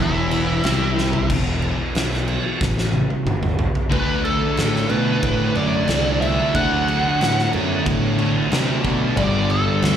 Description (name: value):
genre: stoner and doom metal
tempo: 91 BPM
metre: 4/4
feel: straight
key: unclear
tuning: A4 = 440 Hz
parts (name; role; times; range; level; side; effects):
- fuzz lead guitar; melody; 0.0-10.0 s; E4 to F#5; -24 LUFS; equal; wah, distortion, slapback echo, ping-pong delay
- soft string machine; sustained chords; 0.0-10.0 s; D3 to A4; -34 LUFS; left 1 dB; none
- overdriven electric guitar; riff; 0.0-10.0 s; E2 to D4; -27 LUFS; equal; slapback echo
- thick fuzz guitar; riff; 0.0-10.0 s; E2 to D4; -25 LUFS; left 7 dB; distortion
- thick fuzz guitar; riff; 0.0-10.0 s; E2 to D4; -26 LUFS; right 9 dB; distortion
- fuzz fingered electric bass; bass; 0.0-10.0 s; E1 to C3; -23 LUFS; equal; overdrive
- oversized low-tuned drum kit; drums; 0.3-10.0 s; crash cymbal, kick drum, ride cymbal, snare drum, toms; -23 LUFS; right 1 dB; none
room: small room ambience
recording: live gig heard through the venue's PA, club reverb, faint mains hum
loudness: -17 LUFS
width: side -9 dB against mid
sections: 0.0-1.3 A section; 1.3-3.9 B section; 3.9-10.0 C section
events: lead electric guitar solo 0.0-1.3; drum fill 1.0-1.3, 2.6-3.9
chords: 0.0 Em; 3.9 D; 9.2 G